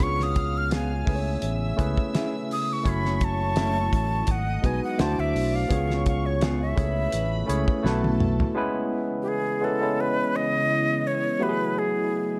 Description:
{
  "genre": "lush 1970s-style soul",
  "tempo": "84 BPM",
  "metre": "4/4",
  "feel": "swing 54% on 16ths",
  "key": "unclear",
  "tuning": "A4 = 441 Hz",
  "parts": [
    { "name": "breathy jazz flute", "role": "melody", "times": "0.0-12.4 s", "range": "G4 to E#6", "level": "-30 LUFS", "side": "equal", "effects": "none" },
    { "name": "warm studio string section", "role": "second line", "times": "0.0-8.6 s", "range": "A4 to E#6", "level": "-40 LUFS", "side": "equal", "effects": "none" },
    { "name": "barky tine electric piano", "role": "accompaniment", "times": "0.0-12.4 s", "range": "F#3 to C#5", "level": "-30 LUFS", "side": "equal", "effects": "phaser" },
    { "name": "ethereal airy pad", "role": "sustained chords", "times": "2.1-12.4 s", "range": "C#3 to G#5", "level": "-39 LUFS", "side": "equal", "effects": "none" },
    { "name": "fingered electric bass", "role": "bass", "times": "0.0-8.4 s", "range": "F#1 to D2", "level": "-29 LUFS", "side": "equal", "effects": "none" },
    { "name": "cloth-damped thuddy drum kit", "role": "drums", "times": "0.0-8.6 s", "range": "hi-hat, kick drum, snare drum, toms", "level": "-30 LUFS", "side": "equal", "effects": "none" },
    { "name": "vibraphone with soft mallets", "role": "texture", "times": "0.0-8.9 s", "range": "A3 to D4", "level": "-39 LUFS", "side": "equal", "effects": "none" },
    { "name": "semi-hollow electric guitar", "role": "riff", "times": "0.7-8.1 s", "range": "B3 to C5", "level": "-37 LUFS", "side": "equal", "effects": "spring reverb" }
  ],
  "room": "light reverb, small room reverb",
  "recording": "dark, warm production",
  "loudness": "-25 LUFS",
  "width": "mono",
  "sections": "0.0-8.6 A section; 8.6-12.4 B section",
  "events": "flute solo 0.0-8.6; drum fill 7.8-8.6",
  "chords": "0.0 C#7; 1.1 Amaj7; 2.9 F#m7; 4.3 G#m7; 5.0 D9; 5.7 C#7; 6.8 Amaj7; 7.8 B7sus4; 8.6 C#m7; 11.4 F#m11",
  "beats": "| 0.00 0.71 1.43 2.14 | 2.85 3.57 4.28 4.99 | 5.71 6.42 7.13 7.85 | 8.56 9.27 9.98 10.70 | 11.41 12.12"
}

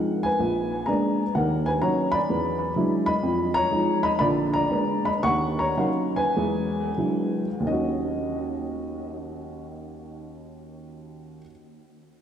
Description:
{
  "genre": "solo jazz",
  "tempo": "85-128 BPM",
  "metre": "4/4",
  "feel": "swing 68% on 8ths, rubato",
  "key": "Eb minor",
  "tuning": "A4 = 440 Hz",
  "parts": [
    { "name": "dark upright piano", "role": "solo", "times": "0.0-11.5 s", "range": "Bb1 to Db6", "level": "-23 LUFS", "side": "equal", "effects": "analog delay" }
  ],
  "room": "wet plate reverb, RT60 3.3 s",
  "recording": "dreamy mix soaked in reverb",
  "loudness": "-22 LUFS",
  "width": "side -9 dB against mid",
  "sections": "0.0-7.7 A section; 7.7-12.2 B section",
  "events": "slowing down 3.2-7.7",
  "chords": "0.4 Bb7b9; 1.4 Ebm7; 2.3 E9; 3.2 Db13/F; 4.2 Bb7b9; 5.2 Ebm7; 6.4 E9; 7.7 Ebm7",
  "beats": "0.40 0.88 | 1.36 1.83 2.30 2.77 | 3.24 3.71 4.20 4.71 | 5.24 5.78 6.36 6.98 | 7.67 8.36 9.05 9.72 | 10.40 11.08"
}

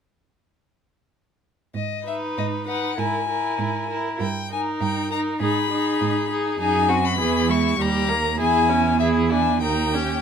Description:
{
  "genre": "quick classical-period movement for string quartet",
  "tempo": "99 BPM",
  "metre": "2/4",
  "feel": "rubato",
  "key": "G# minor",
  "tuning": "A4 = 440 Hz",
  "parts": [
    { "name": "clear cello", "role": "bass", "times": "1.7-10.2 s", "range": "D#2 to G#2", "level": "-25 LUFS", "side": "right 6 dB", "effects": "none" },
    { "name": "rich violin", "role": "melody", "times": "1.8-10.2 s", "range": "D#5 to C#6", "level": "-24 LUFS", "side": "left 7 dB", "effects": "none" },
    { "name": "clear violin", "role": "second line", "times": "2.1-10.2 s", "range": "E4 to B4", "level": "-27 LUFS", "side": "left 2 dB", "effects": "none" },
    { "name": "clear viola", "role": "accompaniment", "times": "2.1-10.2 s", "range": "E3 to E4", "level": "-26 LUFS", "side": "right 2 dB", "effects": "none" }
  ],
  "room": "light reverb",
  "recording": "minimal, uncompressed stereo recording",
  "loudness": "-20 LUFS",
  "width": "side -7 dB against mid",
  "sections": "1.7-10.2 A section",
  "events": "none",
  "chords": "1.7 G#m; 3.0 G#sus2; 4.2 D#/G; 5.4 G#m; 6.6 G#7/F#; 7.2 C#m/E; 7.8 D#; 8.4 C#m/E; 9.0 E7; 9.6 D#7",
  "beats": "| 1.75 2.37 | 2.98 3.59 | 4.20 4.81 | 5.41 6.01 | 6.60 7.19 | 7.79 8.39 | 8.99 9.61"
}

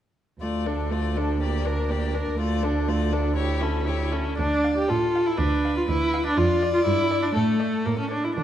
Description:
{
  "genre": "quick classical-period movement for string quartet",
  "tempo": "121 BPM",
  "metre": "2/4",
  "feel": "rubato",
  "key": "D minor",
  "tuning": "A4 = 442 Hz",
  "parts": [
    { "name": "rich violin", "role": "melody", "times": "0.4-8.3 s", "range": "A4 to F5", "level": "-34 LUFS", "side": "left 8 dB", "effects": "none" },
    { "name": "rich violin", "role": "second line", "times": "0.4-8.1 s", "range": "D4 to D5", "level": "-30 LUFS", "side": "left 3 dB", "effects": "none" },
    { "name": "clear viola", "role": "accompaniment", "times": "0.4-8.4 s", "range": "A3 to G4", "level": "-24 LUFS", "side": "equal", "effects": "none" },
    { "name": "rich cello", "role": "bass", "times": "0.4-8.4 s", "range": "D2 to D3", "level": "-26 LUFS", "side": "right 2 dB", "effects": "none" }
  ],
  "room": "moderate recital hall reverb, RT60 1.5 s",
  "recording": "dark, warm production",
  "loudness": "-21 LUFS",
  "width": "side -11 dB against mid",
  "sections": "0.4-4.4 A section; 4.4-8.4 B section",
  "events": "none",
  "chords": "0.4 Dm; 1.4 Gm/D; 2.4 Dm; 3.4 A7/D; 4.4 Dm; 5.4 Dm69; 6.4 Dm/F; 6.9 G5; 7.3 D5/A; 7.9 A",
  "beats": "| 0.41 0.92 | 1.41 1.90 | 2.40 2.88 | 3.37 3.86 | 4.38 4.89 | 5.39 5.89 | 6.37 6.86 | 7.35 7.86 | 8.37"
}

